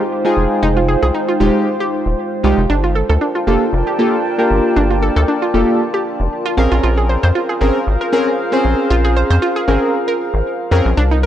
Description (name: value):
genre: deep house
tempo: 116 BPM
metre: 4/4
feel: swing 54% on 16ths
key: unclear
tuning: A4 = 440 Hz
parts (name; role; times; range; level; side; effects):
- dark analog pad; sustained chords; 0.0-11.3 s; Ab3 to A5; -22 LUFS; equal; chorus, phaser
- deep mellow chord stab; stabs; 0.0-10.9 s; Ab3 to C5; -18 LUFS; equal; chorus, cassette tape, analog delay
- warbly tape-like pad; texture; 0.0-11.3 s; C4 to G5; -23 LUFS; equal; chorus, built-in reverb
- rubbery square bass; bass; 0.4-11.3 s; Eb1 to F2; -15 LUFS; equal; tube saturation
- analog pluck; arpeggios; 0.6-11.3 s; D4 to F5; -21 LUFS; right 2 dB; chorus, vintage 12-bit sampler grit, analog delay
room: light reverb, digital ambience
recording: dry, gritty hardware recording, transformer saturation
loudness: -13 LUFS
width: side -11 dB against mid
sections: 0.0-11.3 A section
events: none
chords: 0.0 Fm9; 2.7 Gm9; 6.6 Bbm9